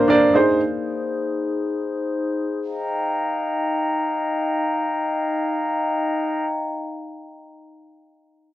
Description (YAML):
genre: pop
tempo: free time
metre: none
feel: none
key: Eb major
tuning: A4 = 439 Hz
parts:
  - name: warm baby grand piano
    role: accompaniment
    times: 0.0-0.6 s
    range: Bb2 to D5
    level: -14 LUFS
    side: right 2 dB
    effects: none
  - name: glass harmonica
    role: sustained chords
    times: 0.0-6.5 s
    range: Bb3 to Bb5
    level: -23 LUFS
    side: left 2 dB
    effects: none
room: light reverb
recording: dry, close 1970s-style studio recording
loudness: -20 LUFS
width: side -14 dB against mid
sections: 0.0-2.6 A section; 2.6-6.7 B section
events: none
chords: 0.3 Ab; 2.6 Ebadd9